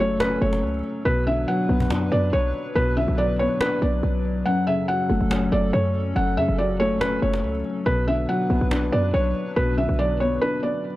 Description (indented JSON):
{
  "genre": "hip hop, trap",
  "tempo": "141 BPM",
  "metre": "4/4",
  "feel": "half-time",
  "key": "unclear",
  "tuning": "A4 = 440 Hz",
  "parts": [
    { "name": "felt-muted upright piano", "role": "melody", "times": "0.0-11.0 s", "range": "B4 to F#5", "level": "-25 LUFS", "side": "equal", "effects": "low-pass filter, tape echo" },
    { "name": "felt-muted upright piano", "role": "accompaniment", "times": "0.0-11.0 s", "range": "F#2 to D4", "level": "-25 LUFS", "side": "left 1 dB", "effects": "low-pass filter" },
    { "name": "hollow soft pad", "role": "sustained chords", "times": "0.0-11.0 s", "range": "F#3 to B4", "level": "-31 LUFS", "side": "left 2 dB", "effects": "chorus" },
    { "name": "short 808-style bass", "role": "bass", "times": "0.0-10.4 s", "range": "F#1 to F#2", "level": "-24 LUFS", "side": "equal", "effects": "none" },
    { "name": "cajon", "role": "drums", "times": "0.2-10.4 s", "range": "none", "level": "-32 LUFS", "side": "equal", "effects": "none" }
  ],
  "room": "studio ambience",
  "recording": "dry, gritty hardware recording",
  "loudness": "-20 LUFS",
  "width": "side -16 dB against mid",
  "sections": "0.0-11.0 A section",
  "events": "kick muted 4.5-4.9; break 10.4-11.0",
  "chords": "0.0 F#m; 1.1 Bm; 4.5 F#m; 7.9 Bm"
}